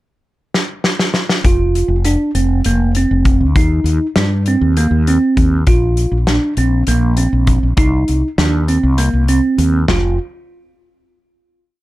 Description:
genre	progressive instrumental, band music in an uneven meter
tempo	199 BPM (eighths)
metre	7/8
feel	straight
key	unclear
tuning	A4 = 443 Hz
part	loose indie drum kit	drums	0.5-10.0 s	hi-hat, kick drum, snare drum, toms	-16 LUFS	left 1 dB	none
part	mellow fretless electric bass	bass	1.4-10.2 s	F1 to G2	-15 LUFS	left 1 dB	none
part	bell-like tine electric piano	arpeggios	1.5-10.2 s	Bb3 to F4	-16 LUFS	right 2 dB	lush chorus
room	light reverb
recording	none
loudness	-12 LUFS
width	side -17 dB against mid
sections	0.0-1.5 pickup bar; 1.5-9.9 A section; 9.9-11.8 final note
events	drum fill 0.6-1.5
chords	0.0 N.C.; 1.5 F5; 3.6 Eb; 5.7 Bb5; 7.8 Cm; 9.9 N.C.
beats	0.25 0.55 0.85 1.16 | 1.46 1.76 2.06 2.36 2.66 2.96 3.26 | 3.56 3.86 4.16 4.47 4.77 5.07 5.37 | 5.67 5.97 6.27 6.57 6.88 7.18 7.48 | 7.78 8.08 8.38 8.68 8.98 9.29 9.59 | 9.89

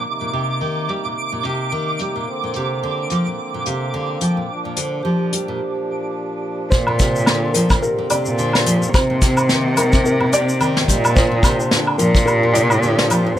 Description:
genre	folktronica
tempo	108 BPM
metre	4/4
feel	swing 56% on 16ths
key	unclear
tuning	A4 = 439 Hz
part	hand-pumped harmonium	sustained chords	0.0-13.4 s	Bb2 to Eb4	-29 LUFS	equal	low-pass filter, plate reverb
part	nylon-string guitar	arpeggios	0.0-13.4 s	Bb2 to G3	-23 LUFS	left 1 dB	low-pass filter
part	twinkling granular texture	texture	0.0-5.6 s	D6	-26 LUFS	right 4 dB	built-in reverb, plate reverb
part	vintage brush drum kit	drums	0.3-13.2 s	hi-hat, shaker, snare drum, woodblock	-20 LUFS	equal	low-pass filter on hats, low-pass filter on snare, low-pass filter on perc, low-pass filter on room
part	vibraphone with medium mallets	second line	2.3-13.4 s	G4 to G5	-28 LUFS	right 4 dB	tape echo, plate reverb
part	felt-muted upright piano	melody	6.7-13.4 s	Bb4 to D5	-22 LUFS	left 1 dB	tape echo, plate reverb
part	rich cello	bass	6.7-13.3 s	Bb2 to C3	-18 LUFS	equal	none
part	kick drum	drums	6.7-12.2 s	none	-18 LUFS	equal	none
room	light reverb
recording	none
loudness	-16 LUFS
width	side -12 dB against mid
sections	0.0-6.7 A section; 6.7-13.4 B section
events	filter sweep on drum 0.0-6.7; filter sweep on nylon-string guitar 0.0-6.7; filter sweep on harmonium 0.0-6.7; break 5.6-6.7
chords	0.0 Cm7; 2.3 Bbadd9; 8.9 Cm7; 11.2 Bbadd9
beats	| 0.05 0.60 1.16 1.72 | 2.27 2.83 3.38 3.94 | 4.49 5.05 5.61 6.16 | 6.72 7.27 7.83 8.38 | 8.94 9.49 10.05 10.61 | 11.16 11.72 12.27 12.83 | 13.38

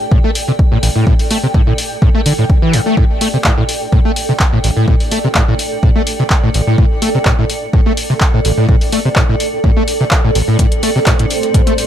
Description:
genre	acid house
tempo	126 BPM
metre	4/4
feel	swing 53% on 16ths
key	A minor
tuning	A4 = 441 Hz
part	granular cloud pad	texture	0.0-11.9 s	A4 to A5	-20 LUFS	right 2 dB	built-in reverb, sidechain pumping
part	overdriven acid bass	riff	0.1-11.7 s	A1 to A3	-15 LUFS	equal	distortion, ensemble chorus, sidechain pumping, ping-pong delay
part	electronic kick drum	drums	0.1-11.6 s	none	-12 LUFS	equal	none
part	punchy analog drum machine	drums	0.4-11.9 s	handclaps, hi-hat	-18 LUFS	left 1 dB	none
part	dark analog pad	sustained chords	10.8-11.9 s	A3 to C5	-22 LUFS	left 2 dB	chorus, sidechain pumping
part	big rock drum kit	drums	10.6-11.9 s	hi-hat, snare drum	-31 LUFS	right 5 dB	none
room	light reverb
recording	none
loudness	-10 LUFS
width	side -10 dB against mid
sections	0.0-11.9 A section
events	none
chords	0.0 Am7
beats	0.12 0.59 | 1.07 1.54 2.02 2.50 | 2.97 3.45 3.92 4.40 | 4.88 5.35 5.83 6.31 | 6.78 7.26 7.73 8.21 | 8.69 9.16 9.64 10.12 | 10.59 11.07 11.54

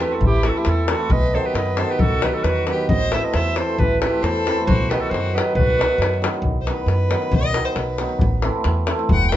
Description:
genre	balkan folk, Balkan wedding band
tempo	135 BPM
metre	2/4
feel	straight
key	B phrygian dominant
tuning	A4 = 444 Hz
part	clear clarinet	melody	0.0-6.2 s	G4 to E5	-23 LUFS	right 1 dB	none
part	warm violin	second line	0.0-9.4 s	E4 to G5	-26 LUFS	left 2 dB	none
part	cimbalom	accompaniment	0.0-9.4 s	D#3 to E4	-24 LUFS	right 1 dB	none
part	upright bass	bass	0.0-9.4 s	E1 to F#2	-22 LUFS	right 1 dB	none
part	davul	percussion	0.0-9.4 s	none	-22 LUFS	left 2 dB	none
room	moderate studio reverb, RT60 0.6 s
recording	nothing above 7.9 kHz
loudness	-17 LUFS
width	side -12 dB against mid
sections	0.0-6.4 A section; 6.4-9.4 B section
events	violin solo 6.4-9.4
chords	0.0 Am; 1.1 B; 2.9 Am; 4.7 B; 8.2 Am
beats	| 0.23 0.67 | 1.12 1.56 | 2.01 2.45 | 2.90 3.34 | 3.79 4.23 | 4.67 5.12 | 5.56 6.00 | 6.44 6.89 | 7.33 7.77 | 8.22 8.66 | 9.10

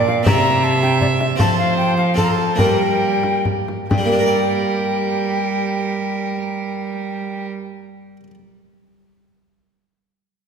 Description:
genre	classical, renaissance-style consort dance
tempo	128-160 BPM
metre	3/4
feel	straight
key	G dorian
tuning	A4 = 439 Hz
part	alto recorder	melody	0.0-7.5 s	D5 to Bb5	-22 LUFS	left 3 dB	none
part	rich violin	second line	0.0-7.5 s	Bb4 to E5	-24 LUFS	right 4 dB	none
part	harpsichord	accompaniment	0.0-8.3 s	G2 to D5	-22 LUFS	left 1 dB	none
part	rich cello	bass	0.0-7.5 s	Bb2 to G3	-22 LUFS	right 4 dB	none
part	frame drum	percussion	0.1-4.1 s	none	-22 LUFS	left 2 dB	none
room	wet concert hall reverb, RT60 2.1 s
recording	none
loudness	-16 LUFS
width	side -6 dB against mid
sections	0.0-3.9 A section; 3.9-6.7 B section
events	slowing down 0.8-3.9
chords	0.3 C; 1.4 F; 2.6 Gm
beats	| 0.26 0.64 1.02 | 1.40 1.78 2.18 | 2.59 3.01 3.45 | 3.91 4.38 4.84 | 5.31 5.77 6.24

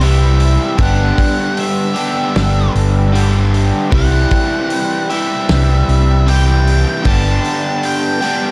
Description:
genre	rock, shoegaze and dream pop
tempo	77 BPM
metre	4/4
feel	straight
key	G major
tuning	A4 = 440 Hz
part	octave-fuzz lead guitar	melody	0.0-8.5 s	E5 to A5	-24 LUFS	equal	distortion, digital delay
part	overdriven electric guitar	riff	0.0-8.5 s	G2 to G4	-19 LUFS	equal	lush chorus
part	fingered electric bass	bass	0.0-7.4 s	G1 to C2	-15 LUFS	equal	none
part	loose indie drum kit	drums	0.0-8.4 s	hi-hat, kick drum, snare drum	-23 LUFS	equal	none
room	small room ambience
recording	dark, warm production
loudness	-14 LUFS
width	mono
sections	0.0-8.5 A section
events	none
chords	0.0 C; 0.8 G6; 3.9 C; 7.1 G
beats	0.01 | 0.79 1.57 2.36 3.14 | 3.92 4.71 5.49 6.27 | 7.05 7.84

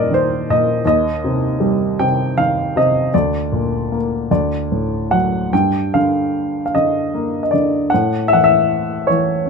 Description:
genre	classical, lyrical solo piano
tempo	51 BPM (dotted quarters)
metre	6/8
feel	uneven beats, rubato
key	G minor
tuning	A4 = 440 Hz
part	dark baby grand piano	solo	0.0-9.5 s	D2 to G5	-15 LUFS	equal	none
room	light reverb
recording	close, detailed microphones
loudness	-15 LUFS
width	side -5 dB against mid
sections	0.0-9.5 A section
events	none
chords	0.0 Eb; 0.8 Cm/Eb; 3.1 Bb/D; 4.3 D; 5.5 Gm; 7.9 A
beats	| 0.84 1.98 | 3.13 4.30 | 5.52 6.73 | 7.91 9.06

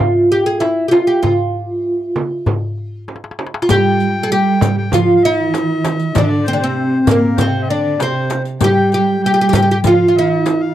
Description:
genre	Arabic maqam ensemble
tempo	98 BPM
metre	4/4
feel	straight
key	F maqam nahawand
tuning	A4 = 440 Hz
part	oud	melody	0.0-10.7 s	Bb3 to Ab4+50c	-14 LUFS	equal	none
part	darbuka	percussion	0.0-10.6 s	none	-20 LUFS	left 2 dB	none
part	frame drum	percussion	0.6-10.6 s	none	-23 LUFS	right 4 dB	none
part	accordion	second line	3.7-10.7 s	Bb4 to G5	-24 LUFS	left 4 dB	none
part	warm studio cello section	second line	3.7-10.7 s	Bb2 to G3	-19 LUFS	right 5 dB	none
part	riq	percussion	3.7-10.6 s	none	-26 LUFS	left 12 dB	none
room	little or no reverb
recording	dry, close 1970s-style studio recording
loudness	-12 LUFS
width	side -12 dB against mid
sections	0.0-3.7 A section; 3.7-10.7 B section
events	drum fill 3.1-3.7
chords	none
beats	0.00 0.61 | 1.23 1.84 2.46 3.08 | 3.69 4.31 4.92 5.54 | 6.15 6.77 7.38 8.00 | 8.61 9.23 9.84 10.46

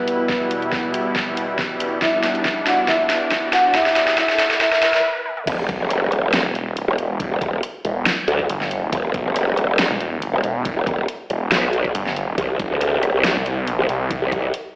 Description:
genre	heavy wobble dubstep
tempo	139 BPM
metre	4/4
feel	swing 53% on 16ths, half-time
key	E minor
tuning	A4 = 436 Hz
part	warm concert grand piano	melody	0.0-5.0 s	B3 to F#5	-20 LUFS	equal	low-pass filter, tape echo
part	supersaw chords	sustained chords	0.0-5.0 s	E2 to E4	-24 LUFS	equal	sidechain pumping, low-pass filter
part	riser and sub drop	sound effects	1.3-7.2 s	none	-29 LUFS	equal	none
part	dubstep drum kit	drums	0.1-14.6 s	crash cymbal, hi-hat, snare drum, toms	-21 LUFS	equal	overdrive, high-pass filter on hats, studio reverb, high-pass filter on snare, high-pass filter on toms, high-pass filter on cymbals
part	electronic kick drum	drums	0.3-14.4 s	none	-30 LUFS	equal	overdrive, studio reverb
part	growl bass	bass	5.5-14.5 s	E1 to D2	-18 LUFS	equal	chorus, overdrive
part	snarling distorted saw bass	bass	5.7-14.2 s	E1 to C2	-23 LUFS	equal	distortion, overdrive
room	moderate digital room reverb, RT60 1.2 s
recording	played on a big sound system in a bare room, stone room reverb, high-pass filter, AM radio sound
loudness	-17 LUFS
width	side -24 dB against mid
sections	0.0-5.5 A section; 5.5-14.8 B section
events	build-up 0.0-5.5; drum fill 0.0-5.0, 5.3; filter sweep on supersaw synth 0.0-5.5; filter sweep 0.0-5.5; stop 5.0-5.5; drop 5.5-14.8; impact 5.5-7.2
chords	0.0 Em; 12.4 Csus2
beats	| 0.29 0.72 1.16 1.59 | 2.02 2.45 2.88 3.31 | 3.75 4.18 4.61 5.04 | 5.47 5.90 6.34 6.77 | 7.20 7.63 8.06 8.49 | 8.93 9.36 9.79 10.22 | 10.65 11.08 11.52 11.95 | 12.38 12.81 13.24 13.67 | 14.11 14.54

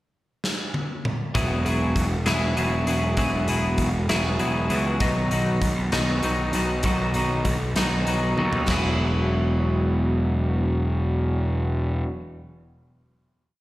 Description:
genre	quiet-loud alternative rock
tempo	65 BPM (dotted quarters)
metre	6/8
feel	straight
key	E major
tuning	A4 = 440 Hz
part	big rock drum kit	drums	0.4-8.8 s	crash cymbal, hi-hat, kick drum, snare drum, toms	-28 LUFS	equal	none
part	twelve-string electric guitar	arpeggios	1.3-12.2 s	D#3 to G#4	-25 LUFS	left 1 dB	wide subtle chorus
part	fuzz picked electric bass	bass	1.4-12.0 s	E1 to D#2	-24 LUFS	equal	overdrive
room	small room ambience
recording	live gig heard through the venue's PA, recital hall reverb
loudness	-21 LUFS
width	side -16 dB against mid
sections	0.0-1.4 pickup bar; 1.4-8.7 verse; 8.7-12.4 final chord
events	drum fill 0.4-1.4, 8.4-8.7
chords	0.0 N.C.; 1.4 Eadd9; 5.0 B; 8.7 Eadd9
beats	0.44 | 1.35 2.27 | 3.18 4.09 | 5.01 5.93 | 6.85 7.76 | 8.68 9.60 | 10.52 11.44

